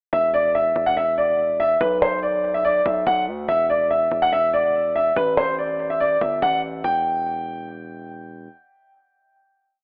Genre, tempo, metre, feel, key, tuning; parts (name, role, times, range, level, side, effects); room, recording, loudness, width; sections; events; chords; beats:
hip hop, trap; 143 BPM; 4/4; half-time; E minor; A4 = 440 Hz
dark concert grand piano; melody; 0.1-8.1 s; B4 to G5; -21 LUFS; equal; analog delay
distorted 808-style bass; bass; 0.1-8.5 s; E1 to D2; -33 LUFS; equal; distortion
moderate echo chamber reverb, RT60 1.9 s, studio ambience; echo-heavy mix, AM radio sound; -21 LUFS; mono
0.1-6.8 breakdown; 6.8-9.8 final chord
0.1 Dsus2/E; 1.8 Bm; 3.5 Dsus2/E; 5.2 Gsus2; 6.8 Em
| 0.13 0.55 0.97 1.39 | 1.81 2.23 2.65 3.07 | 3.48 3.90 4.33 4.74 | 5.16 5.58 6.00 6.42 | 6.84 7.26 7.68 8.10